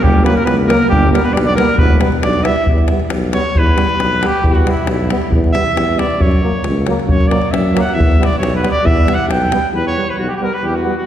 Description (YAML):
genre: balkan folk, Balkan brass band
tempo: 136 BPM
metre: 2/4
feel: straight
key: E dorian sharp4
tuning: A4 = 441 Hz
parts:
  - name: clear trumpet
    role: melody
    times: 0.0-11.1 s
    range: E4 to G5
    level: -18 LUFS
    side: right 1 dB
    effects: none
  - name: dark alto saxophone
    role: second line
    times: 0.0-2.7 s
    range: G3 to E4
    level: -19 LUFS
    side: right 2 dB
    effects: none
  - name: warm tuba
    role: bass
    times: 0.0-10.9 s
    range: E1 to F#2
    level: -18 LUFS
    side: equal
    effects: none
  - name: davul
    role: percussion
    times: 0.0-9.6 s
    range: none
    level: -16 LUFS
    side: equal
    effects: none
  - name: clear trombone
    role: accompaniment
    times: 0.2-10.9 s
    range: A#3 to B3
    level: -24 LUFS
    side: left 3 dB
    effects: none
  - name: clear euphonium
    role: accompaniment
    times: 0.3-10.9 s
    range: F#3 to G3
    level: -22 LUFS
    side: right 2 dB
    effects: none
room: wet concert hall reverb, RT60 1.9 s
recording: heard from further back in the room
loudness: -12 LUFS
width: side -10 dB against mid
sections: 0.0-2.7 A section; 2.7-9.7 B section; 9.7-11.1 C section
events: trumpet solo 2.7-9.7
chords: 0.0 F#; 0.9 G; 1.8 Em; 6.2 F#; 8.0 Em